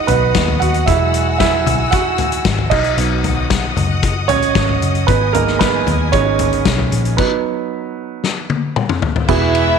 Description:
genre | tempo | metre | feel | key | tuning
piano-driven pop | 114 BPM | 4/4 | straight | B major | A4 = 440 Hz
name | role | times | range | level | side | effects
warm baby grand piano | accompaniment | 0.0-9.8 s | E3 to F#5 | -17 LUFS | right 10 dB | none
muted symphonic string section | sustained chords | 0.0-9.8 s | E3 to E6 | -23 LUFS | left 4 dB | none
vintage muted picked electric bass | bass | 0.0-9.8 s | E1 to D#2 | -19 LUFS | left 2 dB | none
loose indie drum kit | drums | 0.1-9.7 s | crash cymbal, hi-hat, kick drum, ride cymbal, snare drum, toms | -18 LUFS | left 5 dB | none
rich studio violin section | second line | 9.3-9.8 s | E4 to E5 | -18 LUFS | left 2 dB | none
room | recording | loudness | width
moderate echo chamber reverb, RT60 2.0 s, studio ambience | 1960s-style stereo | -13 LUFS | side -6 dB against mid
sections
0.0-9.3 A section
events
grand piano solo 0.0-9.3; stop 7.2-9.3; drum fill 8.2-9.3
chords
0.0 B; 0.9 Eadd9; 2.7 B; 5.1 G#m; 7.2 B; 9.3 Eadd9

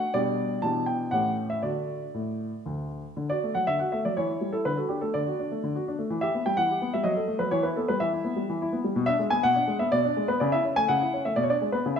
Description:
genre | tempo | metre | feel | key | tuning
classical-period piano sonatina | 124 BPM | 3/4 | rubato | D major | A4 = 442 Hz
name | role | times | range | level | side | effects
warm baby grand piano | solo | 0.0-12.0 s | D2 to A5 | -24 LUFS | left 1 dB | none
room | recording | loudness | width
moderate recital hall reverb, RT60 1.5 s | minimal, uncompressed stereo recording | -24 LUFS | side -7 dB against mid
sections
0.0-3.2 A section; 3.2-12.0 B section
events
none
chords
0.1 G/B; 0.6 Em7/B; 1.1 A7; 1.6 D; 4.2 C#dim/E; 4.6 D; 6.1 Em; 7.0 D#dim/F#; 7.5 Em; 9.0 Bm6; 10.4 A/C#; 11.4 Bm69

